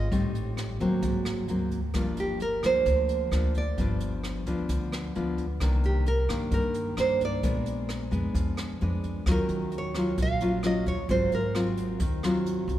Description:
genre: bossa nova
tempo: 131 BPM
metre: 4/4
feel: straight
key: Eb minor from 9.3 s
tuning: A4 = 439 Hz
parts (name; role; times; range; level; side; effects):
- nylon-string guitar; melody; 0.0-12.0 s; G4 to F5; -29 LUFS; right 3 dB; none
- nylon-string guitar; accompaniment; 0.0-12.8 s; G2 to F4; -29 LUFS; left 1 dB; none
- upright bass; bass; 0.0-12.8 s; G1 to G2; -30 LUFS; equal; none
- jazz brush drum kit; drums; 0.1-12.8 s; hi-hat, kick drum, rim click; -34 LUFS; equal; none
room: moderate cathedral reverb, RT60 4.5 s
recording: recorded in a church or concert hall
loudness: -25 LUFS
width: side -13 dB against mid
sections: 0.0-9.3 A section; 9.3-12.8 B section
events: none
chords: 0.1 Am7b5; 1.0 Ab9; 1.9 Gm7; 3.8 G7; 5.6 Cm9; 7.4 Bb7b9; 9.3 Ebm9; 11.1 Ab13

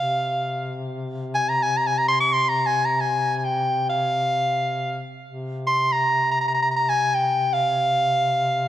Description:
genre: Arabic maqam ensemble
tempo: free time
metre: none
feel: none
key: C maqam bayati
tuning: A4 = 440 Hz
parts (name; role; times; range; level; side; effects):
- clear soprano saxophone; melody; 0.0-8.7 s; F5 to Db6+44c; -20 LUFS; equal; tape echo
- mellow duduk; drone; 0.0-8.7 s; C3; -29 LUFS; left 2 dB; none
room: moderate recital hall reverb, RT60 1.4 s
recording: dark, warm production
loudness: -20 LUFS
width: side -12 dB against mid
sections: 0.0-8.7 A section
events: none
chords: none

